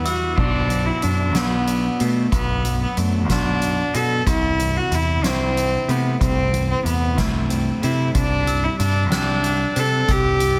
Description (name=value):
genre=post-rock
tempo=62 BPM (dotted quarters)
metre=6/8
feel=straight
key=unclear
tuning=A4 = 435 Hz
part: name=rich cello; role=melody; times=0.0-10.6 s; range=A3 to A4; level=-24 LUFS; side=equal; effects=tape echo
part: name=clean electric guitar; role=arpeggios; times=0.0-10.6 s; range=B2 to G4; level=-30 LUFS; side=equal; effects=tape echo
part: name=growling picked electric bass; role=bass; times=0.0-10.6 s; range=B1 to C3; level=-24 LUFS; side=equal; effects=overdrive
part: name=glockenspiel with hard plastic mallets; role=arpeggios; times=0.1-0.4, 8.5-10.6 s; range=E6 to F#6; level=-33 LUFS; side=equal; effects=tape echo
part: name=soft-mallet drum kit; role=drums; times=0.1-10.6 s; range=crash cymbal, hi-hat, kick drum, snare drum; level=-28 LUFS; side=equal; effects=none
room=studio reverb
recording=none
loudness=-20 LUFS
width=mono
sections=0.4-10.6 A section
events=none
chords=0.4 Bm; 4.3 Am/C; 8.1 Csus2